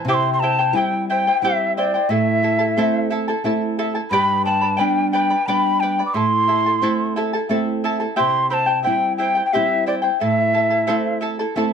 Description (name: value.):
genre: andean folk, Andean ensemble.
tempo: 89 BPM.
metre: 3/4.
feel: straight.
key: A minor.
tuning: A4 = 440 Hz.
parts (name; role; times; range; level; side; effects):
charango; accompaniment; 0.0-11.7 s; E4 to B5; -22 LUFS; left 3 dB; none.
nylon-string guitar; accompaniment; 0.0-11.7 s; G2 to E4; -23 LUFS; right 1 dB; none.
mellow quena; melody; 0.1-11.2 s; D5 to D6; -19 LUFS; equal; none.
room: moderate small room reverb, RT60 0.5 s.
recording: dark, warm production.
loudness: -17 LUFS.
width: side -7 dB against mid.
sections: 0.1-11.7 A section.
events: none.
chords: 0.1 C; 2.1 Am; 4.1 G; 6.2 Am; 8.2 C; 10.2 Am.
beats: | 0.07 0.75 1.43 | 2.10 2.77 3.45 | 4.12 4.80 5.47 | 6.15 6.83 7.50 | 8.18 8.85 9.53 | 10.21 10.88 11.56.